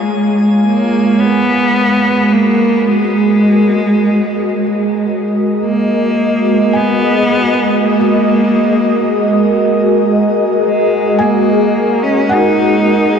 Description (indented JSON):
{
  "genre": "ambient",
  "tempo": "54 BPM",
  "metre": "4/4",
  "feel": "straight",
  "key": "G# dorian",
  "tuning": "A4 = 441 Hz",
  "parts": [
    { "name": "warm cello", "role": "melody", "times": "0.0-13.2 s", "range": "G#3 to D#4", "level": "-14 LUFS", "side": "left 1 dB", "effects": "shimmer reverb, tape echo" },
    { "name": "airy breathy pad", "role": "sustained chords", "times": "0.0-13.2 s", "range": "G#3 to A#5", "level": "-12 LUFS", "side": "right 1 dB", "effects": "chorus, phaser, shimmer reverb" },
    { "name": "felt-muted upright piano", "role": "arpeggios", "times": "0.0-13.2 s", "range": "C#5 to G#5", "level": "-24 LUFS", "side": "equal", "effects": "shimmer reverb, tape echo" },
    { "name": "overtone-sweeping drone", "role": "drone", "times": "1.0-1.3 s", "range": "G#3 to G#4", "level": "-37 LUFS", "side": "left 2 dB", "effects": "none" },
    { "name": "drifting glass-harmonics texture", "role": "texture", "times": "0.0-1.2 s", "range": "G#5", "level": "-30 LUFS", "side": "equal", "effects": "chorus, built-in reverb, shimmer reverb" }
  ],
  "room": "wet huge ambient reverb, RT60 7.1 s",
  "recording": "dark, warm production",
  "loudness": "-10 LUFS",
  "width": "side -7 dB against mid",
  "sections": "0.0-1.2 A section; 1.2-13.2 B section",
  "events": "filter sweep on analog synth pad 1.2-13.2",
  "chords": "0.0 A#m7/G#; 1.2 G#7sus2",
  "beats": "0.07 | 1.18 2.30 3.41 4.52 | 5.63 6.74 7.85 8.96 | 10.07 11.18 12.30"
}